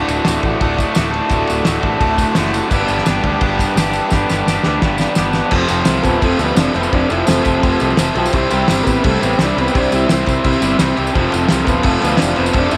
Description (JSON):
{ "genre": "garage rock duo or trio", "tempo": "171 BPM", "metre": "4/4", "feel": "straight", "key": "unclear", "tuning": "A4 = 440 Hz", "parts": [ { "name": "combo organ", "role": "sustained chords", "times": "0.0-12.8 s", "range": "E4 to E5", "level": "-28 LUFS", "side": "equal", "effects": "none" }, { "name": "raw garage guitar", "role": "riff", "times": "0.0-12.8 s", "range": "D2 to G4", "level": "-19 LUFS", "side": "equal", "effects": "overdrive" }, { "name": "picked electric bass", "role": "bass", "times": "0.0-12.8 s", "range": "D1 to D2", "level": "-24 LUFS", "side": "equal", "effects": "overdrive" }, { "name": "cloth-damped thuddy drum kit", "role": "drums", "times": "0.1-12.8 s", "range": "crash cymbal, kick drum, ride cymbal, snare drum", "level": "-21 LUFS", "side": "equal", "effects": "none" }, { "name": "tambourine", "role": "percussion", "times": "0.1-12.8 s", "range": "none", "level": "-34 LUFS", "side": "equal", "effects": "none" }, { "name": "overdriven combo organ", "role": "melody", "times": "6.0-12.8 s", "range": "A3 to E4", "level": "-23 LUFS", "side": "equal", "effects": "none" } ], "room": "moderate echo chamber reverb, RT60 1.8 s, small room ambience", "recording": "none", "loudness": "-15 LUFS", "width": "mono", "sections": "0.0-5.5 A section; 5.5-12.8 B section", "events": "drum fill 4.1-5.5", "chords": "0.0 D; 2.7 G; 5.5 F; 8.3 C; 11.1 F" }